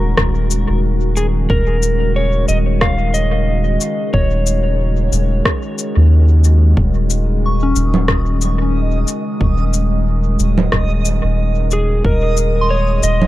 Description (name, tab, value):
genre	ambient dub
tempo	91 BPM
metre	4/4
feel	swing 55% on 16ths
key	Eb minor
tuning	A4 = 440 Hz
part	electric slide guitar	melody	0.0-6.1, 11.7-13.3 s	Ab4 to F5	-21 LUFS	equal	dub echo
part	warbly tape-like pad	sustained chords	0.0-13.3 s	Db3 to Bb4	-23 LUFS	equal	chorus, built-in reverb
part	soft dub sub bass	bass	0.0-13.3 s	Eb1 to Eb2	-14 LUFS	equal	none
part	electronic kick drum	drums	0.2-12.2 s	none	-18 LUFS	equal	none
part	electronic rim click, cabasa and congas	drums	0.2-13.3 s	none	-19 LUFS	right 1 dB	dub echo
part	backwards swelling texture	texture	7.6-13.3 s	Eb5	-27 LUFS	right 6 dB	built-in reverb
part	soft synth bell	arpeggios	7.5-13.3 s	Db4 to Db6	-24 LUFS	left 4 dB	chorus, tremolo, tape echo
room	little or no reverb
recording	none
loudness	-13 LUFS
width	side -15 dB against mid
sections	0.0-13.3 A section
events	none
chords	0.0 Ebm7